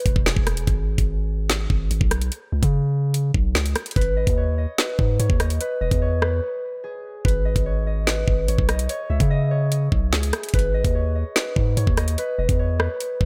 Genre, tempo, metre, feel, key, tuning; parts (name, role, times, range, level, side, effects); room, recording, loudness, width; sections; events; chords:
hip hop, drill; 146 BPM; 4/4; half-time; G# minor; A4 = 444 Hz
concert harp; melody; 0.0-13.3 s; G#4 to E5; -30 LUFS; equal; delay
long sustained 808-style bass; bass; 0.1-13.3 s; E1 to C#3; -24 LUFS; equal
drill drum kit; drums; 0.1-13.3 s; hi-hat, kick drum, rim click, snare drum; -24 LUFS; equal
digital ambience; -22 LUFS; mono
0.7-13.3 A section
break 6.4-7.2
0.0 E; 0.7 G#m; 2.3 Bsus2; 4.0 G#m; 5.6 E; 7.2 G#m; 8.9 C#5; 10.5 G#m; 12.2 E